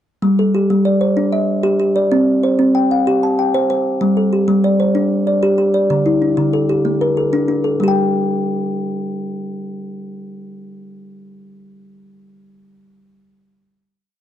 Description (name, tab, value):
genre	southern african traditional, mbira-style interlocking cycle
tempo	127 BPM (dotted quarters)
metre	12/8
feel	straight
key	G equiheptatonic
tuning	A4 = 440 Hz
part	kalimba	solo	0.2-12.2 s	D3 to A5-29c	-14 LUFS	equal	none
room	small room ambience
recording	dry, close 1970s-style studio recording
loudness	-14 LUFS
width	side -11 dB against mid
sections	0.2-7.8 A section; 7.8-11.6 final note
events	none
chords	0.2 G5; 2.1 C5; 4.0 G5; 5.9 D5; 7.8 G5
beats	| 0.22 0.69 1.17 1.64 | 2.11 2.58 3.06 3.53 | 4.00 4.48 4.95 5.42 | 5.90 6.37 6.85 7.32 | 7.80 8.27 8.74 9.21 | 9.69 10.16 10.63 11.10